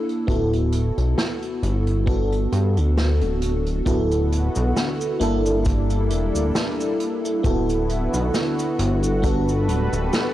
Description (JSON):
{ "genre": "vaporwave", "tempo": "67 BPM", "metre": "4/4", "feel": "swing 55% on 16ths", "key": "D major", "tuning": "A4 = 440 Hz", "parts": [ { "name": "FM electric piano with soft pad layer", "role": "accompaniment", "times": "0.0-10.3 s", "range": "Bb3 to A4", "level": "-24 LUFS", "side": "equal", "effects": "wide subtle chorus, tape echo" }, { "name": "unplugged drum kit", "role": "drums", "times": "0.1-10.3 s", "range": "cabasa, hi-hat, snare drum", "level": "-28 LUFS", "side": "right 1 dB", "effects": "none" }, { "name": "chorused synth bass", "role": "bass", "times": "0.3-10.1 s", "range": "D1 to G2", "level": "-21 LUFS", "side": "equal", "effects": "none" }, { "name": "kick drum", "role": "drums", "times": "0.3-9.4 s", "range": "none", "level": "-23 LUFS", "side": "equal", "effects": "none" }, { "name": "lush unison pad", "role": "sustained chords", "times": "3.9-10.3 s", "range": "D3 to B4", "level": "-28 LUFS", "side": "equal", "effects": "chorus" } ], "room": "studio ambience", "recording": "cassette tape", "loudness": "-19 LUFS", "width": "side -14 dB against mid", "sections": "0.0-10.3 A section", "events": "none", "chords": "0.3 D69; 2.1 Gmaj9; 3.9 D69; 5.2 Gm6; 7.4 D69; 9.2 Gmaj9" }